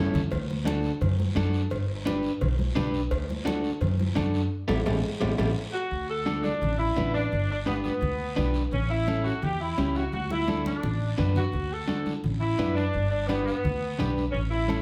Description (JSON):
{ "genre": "latin, cumbia", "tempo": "171 BPM", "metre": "4/4", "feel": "straight", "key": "D major", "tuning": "A4 = 441 Hz", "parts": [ { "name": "electric guitar at the edge of break-up", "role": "accompaniment", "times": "0.0-14.8 s", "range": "C#4 to B4", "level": "-32 LUFS", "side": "equal", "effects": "none" }, { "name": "upright bass", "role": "bass", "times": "0.0-14.8 s", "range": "G1 to F#2", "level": "-31 LUFS", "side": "equal", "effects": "none" }, { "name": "guiro", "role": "percussion", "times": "0.1-14.8 s", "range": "none", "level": "-47 LUFS", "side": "equal", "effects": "none" }, { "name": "congas", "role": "percussion", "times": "0.2-14.8 s", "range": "none", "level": "-35 LUFS", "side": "equal", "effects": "none" }, { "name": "cowbell and timbales", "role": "percussion", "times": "0.3-5.5 s", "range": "none", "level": "-36 LUFS", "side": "equal", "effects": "none" }, { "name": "bright saxophone section", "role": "melody", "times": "5.7-14.8 s", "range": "B3 to A4", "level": "-32 LUFS", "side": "equal", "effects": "none" } ], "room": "wet large studio reverb, RT60 0.8 s", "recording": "heard from further back in the room", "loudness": "-27 LUFS", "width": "mono", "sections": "0.0-5.9 A section; 5.9-14.8 B section", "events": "drum fill 0.0-0.3, 4.5-5.9, 10.1-11.5; band accent 4.5-5.9", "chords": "0.3 D; 1.7 G; 3.1 D; 4.5 A5; 5.9 D; 7.3 G; 8.7 A7; 10.1 D; 12.9 G" }